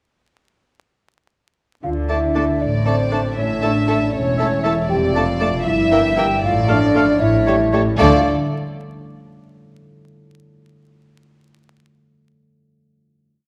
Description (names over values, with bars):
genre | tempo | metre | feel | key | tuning
cinematic, playful, whimsical film cue | 78 BPM (dotted quarters) | 6/8 | straight | D minor | A4 = 439 Hz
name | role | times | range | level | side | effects
mellow hollow silver concert flute | second line | 1.8-8.3 s | C5 to G5 | -26 LUFS | equal | none
mellow French horn section | sustained chords | 1.8-8.2 s | C4 to G4 | -24 LUFS | equal | none
concert harp | arpeggios | 1.8-8.3 s | F2 to D5 | -31 LUFS | equal | none
warm studio cello section | bass | 1.8-8.3 s | E2 to D3 | -26 LUFS | equal | none
warm studio double bass section | bass | 1.8-8.3 s | E1 to D2 | -26 LUFS | equal | none
clear oboe | second line | 2.1-8.2 s | C#5 to F5 | -29 LUFS | equal | none
rich studio violin section | second line | 2.1-8.3 s | A4 to A5 | -31 LUFS | equal | none
mellow bassoon | accompaniment | 2.1-8.2 s | G3 to Bb3 | -29 LUFS | equal | none
warm studio viola section | accompaniment | 2.1-8.3 s | E3 to G4 | -30 LUFS | equal | none
warm studio violin section | melody | 2.6-8.3 s | C#5 to E5 | -27 LUFS | equal | none
room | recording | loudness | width
moderate scoring stage reverb, RT60 1.9 s | vinyl crackle | -17 LUFS | mono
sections
1.8-8.0 A section; 8.0-9.5 final chord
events
none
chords
1.8 D5; 3.4 A; 4.9 Dm/F; 5.7 Edim/G; 6.4 Dm/A; 7.2 A7; 8.0 D5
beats
| 1.84 2.61 | 3.38 4.14 | 4.90 5.66 | 6.43 7.21 | 7.99